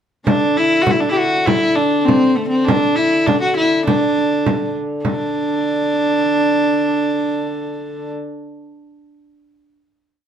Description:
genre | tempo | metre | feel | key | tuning
medieval dance | 102 BPM | 2/4 | straight | D mixolydian | A4 = 440 Hz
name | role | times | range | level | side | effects
warm viola da gamba | melody | 0.3-8.1 s | A3 to G4 | -16 LUFS | equal | none
dark hurdy-gurdy | drone | 0.3-8.2 s | D3 | -25 LUFS | left 3 dB | none
frame drum | percussion | 0.3-5.3 s | none | -20 LUFS | right 1 dB | none
room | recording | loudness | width
moderate studio reverb, RT60 0.7 s | band playing live in one room | -14 LUFS | side -8 dB against mid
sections
0.3-5.1 A section; 5.1-7.3 final note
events
speeding up 0.3-7.3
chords
none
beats
| 0.28 0.89 | 1.49 2.09 | 2.69 3.29 | 3.88 4.47 | 5.05 5.63 | 6.21 6.77

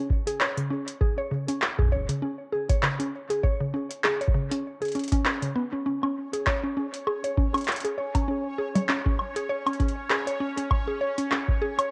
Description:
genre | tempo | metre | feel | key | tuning
IDM | 99 BPM | 4/4 | swing 56% on 16ths | unclear | A4 = 440 Hz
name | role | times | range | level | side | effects
mallet-like synth pluck | arpeggios | 0.0-11.9 s | C#3 to C#5 | -31 LUFS | equal | chorus, cassette tape, analog delay
electronic kick drum | drums | 0.1-11.6 s | none | -27 LUFS | equal | overdrive, cassette tape
electro analog drum machine | drums | 0.3-11.9 s | congas, handclaps, hi-hat, woodblock | -30 LUFS | equal | overdrive, cassette tape
bubbling stepped-filter texture | texture | 6.1-11.9 s | C#4 to C#5 | -39 LUFS | equal | chorus, built-in reverb, cassette tape
room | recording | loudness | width
moderate spring reverb, RT60 1.8 s | home recording on cassette | -27 LUFS | mono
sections
0.0-11.9 A section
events
none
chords
0.0 C#5; 10.7 E6 (rootless)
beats
0.41 | 1.01 1.62 2.22 2.83 | 3.44 4.04 4.65 5.25 | 5.86 6.47 7.07 7.68 | 8.28 8.89 9.50 10.10 | 10.71 11.31

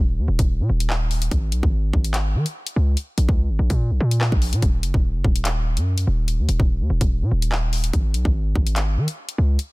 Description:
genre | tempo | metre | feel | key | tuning
hip hop, drill | 145 BPM | 4/4 | half-time | Eb minor | A4 = 440 Hz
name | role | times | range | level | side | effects
hard-hitting 808-style bass | bass | 0.0-9.6 s | Eb1 to Eb3 | -20 LUFS | equal | none
drill drum kit | drums | 0.4-9.7 s | handclaps, hi-hat, kick drum, rim click | -22 LUFS | equal | none
room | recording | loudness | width
digital ambience | dense, heavily limited modern master | -18 LUFS | side -23 dB against mid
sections
0.0-9.7 A section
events
none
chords
none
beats
0.07 0.49 0.90 | 1.31 1.73 2.14 2.56 | 2.97 3.38 3.80 4.21 | 4.62 5.04 5.45 5.87 | 6.28 6.69 7.11 7.52 | 7.93 8.35 8.76 9.18 | 9.59

